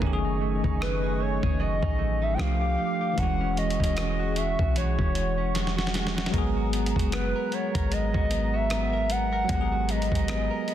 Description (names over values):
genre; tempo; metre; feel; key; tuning
contemporary R&B; 76 BPM; 4/4; swing 58% on 16ths; G# minor; A4 = 440 Hz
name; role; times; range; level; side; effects
bell-like tine electric piano; accompaniment; 0.0-10.7 s; D#3 to G#4; -31 LUFS; equal; slow stereo tremolo
hollow soft pad; sustained chords; 0.0-10.7 s; A3 to D6; -37 LUFS; equal; chorus, sidechain pumping
direct-recorded clean electric guitar; arpeggios; 0.0-10.7 s; E3 to A#4; -35 LUFS; right 9 dB; tape echo
warm 808-style bass; bass; 0.0-10.5 s; E1 to C2; -29 LUFS; equal; none
dusty soul sampler-style drum kit; drums; 0.0-10.7 s; hi-hat, kick drum, rim click, snare drum; -29 LUFS; equal; none
hollow clarinet-like synth lead; melody; 0.8-10.7 s; B4 to G5; -30 LUFS; equal; chorus
room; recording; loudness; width
digital ambience; dense, heavily limited modern master; -24 LUFS; side -11 dB against mid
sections
0.0-10.7 A section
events
drum fill 5.5-6.3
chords
0.0 F#m69; 2.4 F69; 3.2 E69; 6.3 G#m9